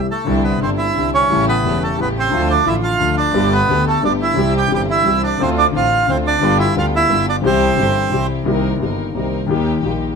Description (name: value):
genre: tango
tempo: 176 BPM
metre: 3/4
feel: rubato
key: C major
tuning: A4 = 444 Hz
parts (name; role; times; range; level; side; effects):
- bandoneon; melody; 0.0-8.3 s; A3 to G5; -17 LUFS; right 4 dB; none
- clear concert grand piano; accompaniment; 0.0-10.2 s; E1 to G4; -19 LUFS; left 4 dB; none
- clear double bass; bass; 0.0-10.2 s; E1 to Eb2; -22 LUFS; right 1 dB; none
- warm studio string section; stabs; 0.3-10.2 s; A3 to Bb4; -26 LUFS; right 1 dB; none
room: light reverb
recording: minimal, uncompressed stereo recording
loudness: -14 LUFS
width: side -5 dB against mid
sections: 0.3-8.5 A section; 8.5-10.2 B section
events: none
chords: 0.3 Cadd9; 1.3 A7; 2.3 Dm; 3.3 Gadd9; 4.4 C; 5.4 Dm7; 6.4 G7; 7.4 C; 8.5 Cm7; 9.5 Eb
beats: | 0.27 0.61 0.96 | 1.30 1.64 1.98 | 2.32 2.66 3.00 | 3.34 3.69 4.03 | 4.37 4.71 5.05 | 5.40 5.74 6.08 | 6.42 6.76 7.10 | 7.44 7.78 8.12 | 8.47 8.81 9.15 | 9.49 9.83